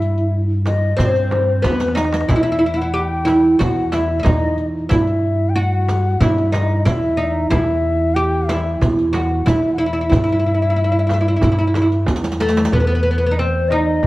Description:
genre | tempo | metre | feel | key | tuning
Arabic maqam ensemble | 92 BPM | 4/4 | straight | E maqam nahawand | A4 = 439 Hz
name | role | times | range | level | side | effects
oud | melody | 0.0-14.1 s | A3 to G4 | -18 LUFS | right 1 dB | none
breathy reedy ney | second line | 0.0-14.1 s | A4 to G5 | -23 LUFS | left 4 dB | none
upright bass | bass | 0.0-14.1 s | B1 to G2 | -19 LUFS | equal | none
darbuka | percussion | 0.0-14.1 s | none | -25 LUFS | right 1 dB | none
riq | percussion | 0.0-12.7 s | none | -29 LUFS | right 2 dB | none
frame drum | percussion | 0.7-14.1 s | none | -26 LUFS | right 2 dB | none
room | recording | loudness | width
light reverb | worn, warbling old tape, cassette tape, warbly pitch drift | -15 LUFS | side -18 dB against mid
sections
0.0-12.7 A section; 12.7-14.1 B section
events
drum fill 1.6-2.3, 12.1-12.7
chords
none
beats
0.34 0.99 1.64 | 2.30 2.95 3.60 4.25 | 4.90 5.55 6.21 6.86 | 7.51 8.16 8.81 9.47 | 10.12 10.77 11.42 12.08 | 12.73 13.38 14.03

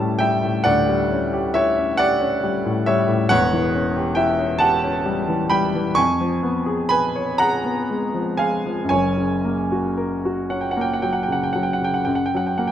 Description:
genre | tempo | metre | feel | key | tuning
classical, romantic nocturne for solo piano | 37-46 BPM (dotted quarters) | 12/8 | rubato | unclear | A4 = 440 Hz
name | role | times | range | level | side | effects
clear grand piano | solo | 0.0-12.7 s | E1 to C#6 | -18 LUFS | equal | none
room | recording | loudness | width
moderate recital hall reverb, RT60 1.6 s | close, detailed microphones | -18 LUFS | side -10 dB against mid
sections
0.0-12.7 A section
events
none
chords
0.0 A7/D; 3.3 C#dim/E; 6.0 C#7/E#; 8.9 F#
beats
0.67 2.00 | 3.32 4.63 5.98 7.41 | 8.91 10.51 12.07

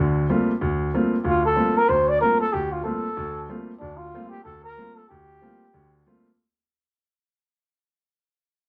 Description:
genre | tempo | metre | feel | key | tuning
jazz | 187 BPM | 4/4 | swing 61% on 8ths | G minor | A4 = 440 Hz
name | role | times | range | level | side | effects
clear baby grand piano | accompaniment | 0.0-6.3 s | D2 to F4 | -26 LUFS | equal | none
breathy trumpet | melody | 1.3-6.0 s | D4 to D5 | -24 LUFS | equal | none
room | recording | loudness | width
wet studio reverb, RT60 0.6 s | band playing live in one room | -22 LUFS | mono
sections
0.0-6.4 A section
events
fade-out 0.0-6.4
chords
0.0 Gm11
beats
0.29 0.61 0.93 | 1.25 1.57 1.90 2.22 | 2.54 2.86 3.18 3.50 | 3.82 4.14 4.46 4.78 | 5.10 5.42 5.74 6.06

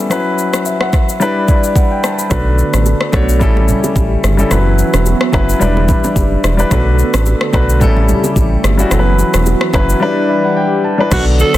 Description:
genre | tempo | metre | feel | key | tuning
afrobeats | 109 BPM | 4/4 | swing 55% on 16ths | B minor | A4 = 441 Hz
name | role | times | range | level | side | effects
warm baby grand piano | accompaniment | 0.0-11.6 s | F#3 to B5 | -15 LUFS | left 2 dB | none
afro-pop drum kit | drums | 0.1-11.6 s | crash cymbal, kick drum, rim click, shaker | -16 LUFS | equal | none
hollow soft pad | sustained chords | 2.3-11.6 s | C#3 to A4 | -21 LUFS | right 3 dB | chorus, sidechain pumping
round analog bass | bass | 2.3-11.6 s | E1 to B1 | -13 LUFS | equal | none
congas and bongos | percussion | 2.3-11.6 s | none | -23 LUFS | right 4 dB | none
breathy alto saxophone | melody | 11.1-11.6 s | F#4 to A4 | -15 LUFS | right 4 dB | none
room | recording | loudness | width
studio reverb | dense, heavily limited modern master | -10 LUFS | side -14 dB against mid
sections
0.0-2.3 A section; 2.3-11.1 B section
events
grand piano fill 10.0-11.1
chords
0.1 F#7sus4; 1.2 Em7; 2.3 Bm7; 3.4 A7; 4.5 F#7sus4; 5.6 Em7; 6.7 Bm7; 7.8 A7; 8.9 F#7sus4; 10.0 Em7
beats
| 0.11 0.66 1.21 1.76 | 2.31 2.86 3.41 3.96 | 4.51 5.06 5.61 6.16 | 6.71 7.26 7.81 8.36 | 8.91 9.46 10.02 10.56 | 11.12

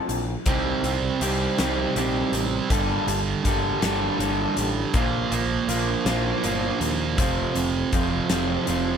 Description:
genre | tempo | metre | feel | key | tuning
quiet-loud alternative rock | 54 BPM (dotted quarters) | 6/8 | straight | C dorian | A4 = 440 Hz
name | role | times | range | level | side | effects
electric guitar through a small old amp | arpeggios | 0.0-9.0 s | D3 to A4 | -28 LUFS | left 4 dB | none
growling picked electric bass | bass | 0.1-8.9 s | F1 to Eb2 | -29 LUFS | left 1 dB | overdrive
huge arena drum kit | drums | 0.1-8.8 s | hi-hat, kick drum, snare drum | -28 LUFS | left 1 dB | none
thick fuzz guitar | riff | 0.5-9.0 s | F2 to C4 | -24 LUFS | right 7 dB | distortion
room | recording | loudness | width
little or no reverb | none | -21 LUFS | side -7 dB against mid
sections
0.0-9.0 A section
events
none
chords
0.5 Cm; 2.7 Gmadd9; 4.9 Bb; 7.2 F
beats
| 0.46 1.58 | 2.70 3.83 | 4.95 6.07 | 7.19 8.31

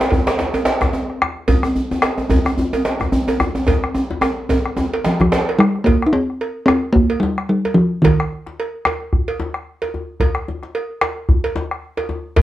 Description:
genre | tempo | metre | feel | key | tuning
west african traditional, West African drum ensemble | 110 BPM | 4/4 | swing 55% on 16ths | Eb major pentatonic | A4 = 440 Hz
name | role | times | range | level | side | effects
djembe | percussion | 0.0-5.5 s | none | -19 LUFS | equal | none
bombo | percussion | 0.1-12.4 s | none | -19 LUFS | equal | none
cowbell | percussion | 0.1-12.4 s | none | -24 LUFS | right 3 dB | none
djembe | percussion | 0.1-12.4 s | none | -24 LUFS | left 3 dB | none
talking drum | melody | 5.1-8.5 s | Eb3 to Eb4 | -15 LUFS | equal | none
room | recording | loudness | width
moderate studio reverb, RT60 0.6 s | worn, warbling old tape, cassette tape, warbly pitch drift | -16 LUFS | side -14 dB against mid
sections
0.0-5.9 A section; 5.9-12.4 B section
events
drum fill 3.7-5.9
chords
none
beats
0.39 0.94 | 1.49 2.04 2.59 3.13 | 3.68 4.23 4.77 5.32 | 5.86 6.41 6.95 7.50 | 8.04 8.58 9.12 9.66 | 10.21 10.75 11.29 11.83 | 12.37

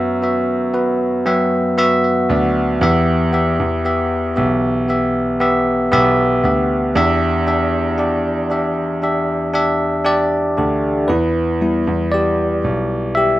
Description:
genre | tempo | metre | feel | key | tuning
pop ballad | 58 BPM | 4/4 | straight | E minor | A4 = 440 Hz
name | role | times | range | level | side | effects
bell-like tine electric piano | accompaniment | 0.0-13.4 s | E3 to G5 | -16 LUFS | equal | none
clear concert grand piano | bass | 0.0-13.4 s | B1 to F#2 | -21 LUFS | right 1 dB | none
room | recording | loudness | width
moderate studio reverb, RT60 0.6 s | rough home demo mix | -15 LUFS | side -15 dB against mid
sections
0.0-11.1 A section; 11.1-13.4 A section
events
tine electric piano fill 0.7-2.8; tine electric piano solo 11.1-13.4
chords
0.0 Bsus4/F#; 2.8 Em; 7.0 Em7; 11.1 Em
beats
0.75 1.78 | 2.82 3.85 4.89 5.92 | 6.95 7.99 9.02 10.06 | 11.09 12.13 13.16

